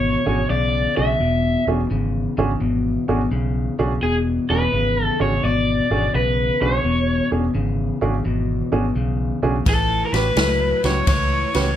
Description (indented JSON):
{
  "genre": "electric blues shuffle",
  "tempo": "85 BPM",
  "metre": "4/4",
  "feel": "swing 67% on 8ths",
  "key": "E mixolydian",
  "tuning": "A4 = 439 Hz",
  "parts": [
    { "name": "raw garage guitar", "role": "melody", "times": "0.0-11.8 s", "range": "G#4 to E5", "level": "-21 LUFS", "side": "equal", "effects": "overdrive" },
    { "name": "electric guitar at the edge of break-up", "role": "riff", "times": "0.0-11.8 s", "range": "E2 to F#3", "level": "-23 LUFS", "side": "left 3 dB", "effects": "none" },
    { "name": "vintage muted fingered electric bass", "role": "bass", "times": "0.0-11.7 s", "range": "E1 to C#2", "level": "-23 LUFS", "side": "equal", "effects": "none" },
    { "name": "warm upright piano", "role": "accompaniment", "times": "0.3-11.7 s", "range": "C#4 to B4", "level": "-24 LUFS", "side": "right 5 dB", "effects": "none" },
    { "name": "swinging big-band drum kit", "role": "drums", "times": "9.7-11.7 s", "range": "kick drum, ride cymbal, snare drum", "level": "-22 LUFS", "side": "equal", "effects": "none" }
  ],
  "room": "light reverb",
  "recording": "lossy compression artefacts",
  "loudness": "-18 LUFS",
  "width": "side -11 dB against mid",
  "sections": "0.0-11.8 A section",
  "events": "none",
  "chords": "0.0 E13; 9.7 A13"
}